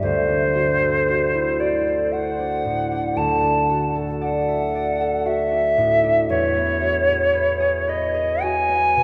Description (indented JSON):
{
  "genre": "classical, impressionist duo for flute and harp",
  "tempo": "57 BPM",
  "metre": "3/4",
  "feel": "rubato",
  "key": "unclear",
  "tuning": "A4 = 440 Hz",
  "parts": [
    { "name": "silver concert flute", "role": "melody", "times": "0.0-9.0 s", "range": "C5 to A5", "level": "-22 LUFS", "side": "equal", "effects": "none" },
    { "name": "concert harp", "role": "accompaniment", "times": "0.0-9.0 s", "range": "D2 to E5", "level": "-25 LUFS", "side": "equal", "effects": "none" }
  ],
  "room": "wet cathedral reverb, RT60 5.4 s",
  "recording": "in a vast, echoing space",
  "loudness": "-20 LUFS",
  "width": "mono",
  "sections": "0.0-9.0 A section",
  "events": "none",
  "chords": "0.0 Dadd9; 6.3 Eadd9"
}